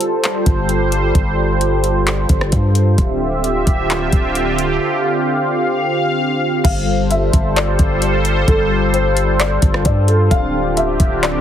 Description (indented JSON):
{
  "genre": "hip hop, atmospheric cloud-rap",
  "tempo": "131 BPM",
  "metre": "4/4",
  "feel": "half-time",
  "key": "unclear",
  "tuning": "A4 = 441 Hz",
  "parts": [
    { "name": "sweeping resonant pad", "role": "sustained chords", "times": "0.0-11.4 s", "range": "D3 to F5", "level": "-17 LUFS", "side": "equal", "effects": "chorus, sidechain pumping" },
    { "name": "smooth R&B drum kit", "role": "drums", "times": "0.0-11.3 s", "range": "crash cymbal, handclaps, hi-hat, kick drum, rim click", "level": "-17 LUFS", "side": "equal", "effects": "none" },
    { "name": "long sustained 808-style bass", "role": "bass", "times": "0.5-11.4 s", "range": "D1 to G2", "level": "-18 LUFS", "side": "equal", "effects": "none" },
    { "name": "felt-muted upright piano", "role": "melody", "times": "6.6-11.4 s", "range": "A4 to F5", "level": "-21 LUFS", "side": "left 2 dB", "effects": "digital delay" }
  ],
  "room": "little or no reverb",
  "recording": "heavily compressed radio sound",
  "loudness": "-13 LUFS",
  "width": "side -10 dB against mid",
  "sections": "0.0-6.6 A section; 6.6-11.4 B section",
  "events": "break 0.0",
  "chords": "0.0 G9sus4; 3.0 Dm11; 6.6 G9sus4; 10.3 Dm11"
}